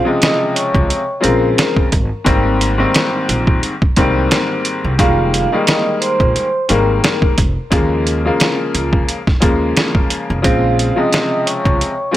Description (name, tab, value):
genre	hip hop, boom-bap hip-hop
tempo	88 BPM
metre	4/4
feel	swing 56% on 16ths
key	Bb dorian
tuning	A4 = 440 Hz
part	vibraphone with soft mallets	melody	0.0-12.2 s	F4 to Eb6	-19 LUFS	right 1 dB	high-pass filter, low-pass filter, tape echo
part	bright upright piano	accompaniment	0.0-12.2 s	Ab2 to C4	-17 LUFS	left 2 dB	cassette tape, high-pass filter, low-pass filter
part	trip hop sampler-style drum kit	drums	0.2-12.2 s	hi-hat, kick drum, snare drum	-15 LUFS	right 1 dB	none
part	upright bass	bass	0.7-11.8 s	F1 to Eb2	-18 LUFS	equal	none
room	small room ambience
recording	none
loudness	-12 LUFS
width	side -14 dB against mid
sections	0.0-12.2 A section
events	none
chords	0.0 Bbm7; 2.3 Abmaj7; 5.0 Fm11; 7.7 Eb7sus4; 10.4 Bbm7